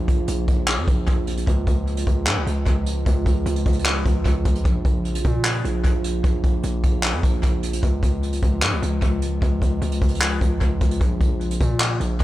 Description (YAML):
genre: hip hop, trap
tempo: 151 BPM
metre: 4/4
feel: half-time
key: Bb minor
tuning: A4 = 440 Hz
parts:
  - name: warbly tape-like pad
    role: sustained chords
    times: 0.0-12.2 s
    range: Db3 to F4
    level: -29 LUFS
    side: right 1 dB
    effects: chorus, built-in reverb
  - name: distorted 808-style bass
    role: bass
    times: 0.0-12.2 s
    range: Bb1 to Bb2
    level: -23 LUFS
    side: equal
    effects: distortion
  - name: vintage brush drum kit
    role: drums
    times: 0.1-12.2 s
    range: handclaps, hi-hat, kick drum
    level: -21 LUFS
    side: equal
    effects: vintage 12-bit sampler grit
room: little or no reverb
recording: echo-heavy mix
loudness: -19 LUFS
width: side -15 dB against mid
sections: 0.0-12.2 A section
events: none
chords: 0.0 Bbm; 1.5 Db; 4.7 Bbm; 7.8 Db; 11.0 Bbm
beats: 0.28 0.68 1.07 | 1.47 1.87 2.27 2.67 | 3.06 3.46 3.86 4.25 | 4.65 5.05 5.45 5.84 | 6.24 6.64 7.04 7.43 | 7.83 8.23 8.62 9.02 | 9.42 9.82 10.21 10.61 | 11.01 11.41 11.80 12.20